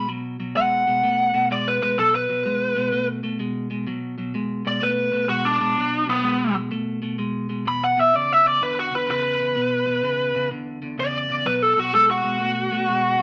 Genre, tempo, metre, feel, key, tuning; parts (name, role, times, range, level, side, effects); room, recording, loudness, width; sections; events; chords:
blues; 127 BPM; 4/4; swing 66% on 8ths; A4 = 439 Hz
biting lead guitar; melody; 0.0-13.2 s; B3 to B5; -22 LUFS; equal; overdrive
clean electric guitar; riff; 0.0-13.2 s; E2 to A3; -30 LUFS; equal
moderate studio reverb, RT60 0.8 s; -22 LUFS; mono
0.1-13.2 A section
lead electric guitar solo 0.1-13.2
0.1 B5; 7.7 E5; 11.5 B5